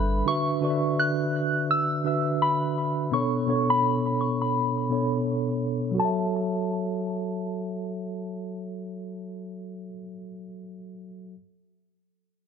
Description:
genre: contemporary R&B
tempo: 84 BPM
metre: 4/4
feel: swing 58% on 16ths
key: F# minor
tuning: A4 = 440 Hz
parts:
  - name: soft synth bell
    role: melody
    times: 0.0-10.0 s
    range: A5 to F#6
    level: -28 LUFS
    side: left 1 dB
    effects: chorus, phaser, tape echo
  - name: mellow tine electric piano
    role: accompaniment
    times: 0.0-11.4 s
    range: B2 to E5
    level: -27 LUFS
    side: right 1 dB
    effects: medium stereo tremolo
room: moderate plate reverb, RT60 2.5 s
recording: echo-heavy mix, low-pass filter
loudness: -24 LUFS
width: side -7 dB against mid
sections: 0.0-6.0 A section; 6.0-8.8 B section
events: filter sweep 0.0-6.0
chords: 0.3 D6; 3.1 Bm7; 6.0 F#m7

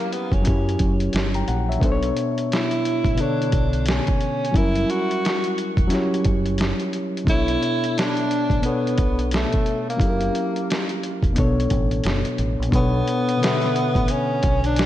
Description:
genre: lo-fi hip hop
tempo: 88 BPM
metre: 4/4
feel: swing 62% on 16ths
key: B minor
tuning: A4 = 440 Hz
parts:
  - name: breathy tenor saxophone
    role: melody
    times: 0.0-14.9 s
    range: A3 to F#4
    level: -25 LUFS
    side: right 1 dB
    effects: low-pass filter, diffuse ambient delay
  - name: reed electric piano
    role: accompaniment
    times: 0.0-14.9 s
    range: B2 to A#5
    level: -24 LUFS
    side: left 2 dB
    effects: low-pass filter
  - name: lo-fi sampler-style drum kit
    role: drums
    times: 0.1-14.9 s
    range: hi-hat, kick drum, snare drum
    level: -23 LUFS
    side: equal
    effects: vintage 12-bit sampler grit
  - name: deep dub fingered electric bass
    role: bass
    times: 0.3-14.9 s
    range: E1 to F#2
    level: -24 LUFS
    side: equal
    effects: none
room: moderate lush hall reverb, RT60 2.2 s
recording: dreamy mix soaked in reverb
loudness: -19 LUFS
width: side -13 dB against mid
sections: 0.0-12.7 A section; 12.7-14.9 B section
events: none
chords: 0.0 F#7b9; 1.8 Bm9; 4.5 F#7b9; 7.3 Bm9; 10.0 F#7b9; 11.4 Bm9

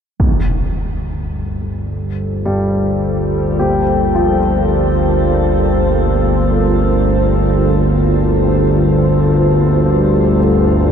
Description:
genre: dark ambient drone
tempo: free time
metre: none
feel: none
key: G minor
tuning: A4 = 439 Hz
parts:
  - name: deep dark ambient pad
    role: sustained chords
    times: 0.9-10.9 s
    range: G3 to C5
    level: -17 LUFS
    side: equal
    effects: chorus, built-in reverb, shimmer reverb
  - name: analog drone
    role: drone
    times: 0.2-10.9 s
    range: G1 to D2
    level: -15 LUFS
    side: equal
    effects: chorus
  - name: warm concert grand piano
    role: arpeggios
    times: 2.5-10.9 s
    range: G2 to G4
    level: -21 LUFS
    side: left 2 dB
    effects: ping-pong delay, shimmer reverb
room: moderate huge ambient reverb, RT60 8.9 s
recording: none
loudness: -12 LUFS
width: side -8 dB against mid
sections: 0.2-10.9 A section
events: fade-out on ambient pad 0.2-10.9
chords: 0.2 Gm7

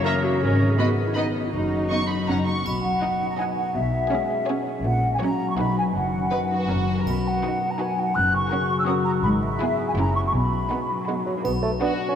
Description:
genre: cinematic, playful, whimsical film cue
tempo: 164 BPM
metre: 3/4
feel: straight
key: B major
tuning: A4 = 440 Hz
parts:
  - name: mellow clarinet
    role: second line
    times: 0.0-2.5 s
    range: D#4 to A#4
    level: -30 LUFS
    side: right 1 dB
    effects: none
  - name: concert harp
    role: arpeggios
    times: 0.0-12.2 s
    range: F#2 to C#5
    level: -27 LUFS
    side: left 3 dB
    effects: none
  - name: warm studio cello section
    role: bass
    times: 0.0-11.7 s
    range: F#2 to D#4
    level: -30 LUFS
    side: equal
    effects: none
  - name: rich chamber violin section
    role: melody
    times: 0.1-12.2 s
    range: F#4 to C#6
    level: -35 LUFS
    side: left 1 dB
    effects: none
  - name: rich chamber violin section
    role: second line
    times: 0.1-12.1 s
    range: D#4 to F#5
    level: -34 LUFS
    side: left 1 dB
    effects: none
  - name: rich chamber viola section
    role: accompaniment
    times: 0.1-12.1 s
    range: B3 to D#4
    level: -33 LUFS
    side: right 4 dB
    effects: none
  - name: warm chamber double bass section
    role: bass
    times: 0.4-11.7 s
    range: F#1 to B1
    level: -27 LUFS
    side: equal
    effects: none
  - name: small flute group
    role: second line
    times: 2.5-11.1 s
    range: E5 to F#6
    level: -25 LUFS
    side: equal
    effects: none
  - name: triangle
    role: percussion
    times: 2.7-3.4, 7.1-7.8, 11.4-12.1 s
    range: none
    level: -44 LUFS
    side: right 5 dB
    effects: none
  - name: dark bassoon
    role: accompaniment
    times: 11.1-12.2 s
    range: F#3 to C#4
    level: -26 LUFS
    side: right 4 dB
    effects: none
room: wet cathedral reverb, RT60 5.6 s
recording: in a vast, echoing space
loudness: -21 LUFS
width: side -8 dB against mid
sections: 0.0-2.7 A section; 2.7-11.4 B section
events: none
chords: 0.4 G#m; 1.5 B/F#; 2.3 F#; 2.7 B; 3.8 C#m7/B; 4.8 F#/A#; 5.6 B; 5.9 B/F#; 6.7 F#; 7.1 B; 8.2 F#; 9.2 E/G#; 10.0 F#7b9; 10.3 B; 11.4 Bm

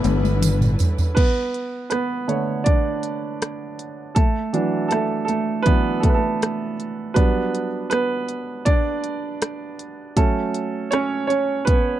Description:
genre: pop ballad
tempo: 80 BPM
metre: 4/4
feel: straight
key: unclear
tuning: A4 = 440 Hz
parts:
  - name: mellow French horn section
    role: second line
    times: 0.0-0.8 s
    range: B3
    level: -26 LUFS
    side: left 16 dB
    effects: none
  - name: clear baby grand piano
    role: accompaniment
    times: 0.0-12.0 s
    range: D3 to D5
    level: -22 LUFS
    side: right 3 dB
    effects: none
  - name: rich studio string section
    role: sustained chords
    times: 0.0-1.1 s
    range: D3 to B4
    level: -29 LUFS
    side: equal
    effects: none
  - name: fingered electric bass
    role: bass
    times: 0.0-0.8 s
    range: G1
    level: -20 LUFS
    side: equal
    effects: none
  - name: pop drum kit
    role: drums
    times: 0.0-11.8 s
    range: crash cymbal, hi-hat, kick drum, rim click, toms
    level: -19 LUFS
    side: equal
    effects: none
  - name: tambourine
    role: percussion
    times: 0.1-1.2 s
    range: none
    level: -35 LUFS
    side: right 20 dB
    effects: none
room: little or no reverb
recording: dry, close 1970s-style studio recording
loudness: -19 LUFS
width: side -12 dB against mid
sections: 0.0-1.2 A section; 1.2-12.0 B section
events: drum fill 0.0-1.2; grand piano solo 1.2-12.0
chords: 0.0 G6; 1.2 Bm7; 4.2 Dadd9; 7.2 Gmaj7/F#; 10.2 F#m

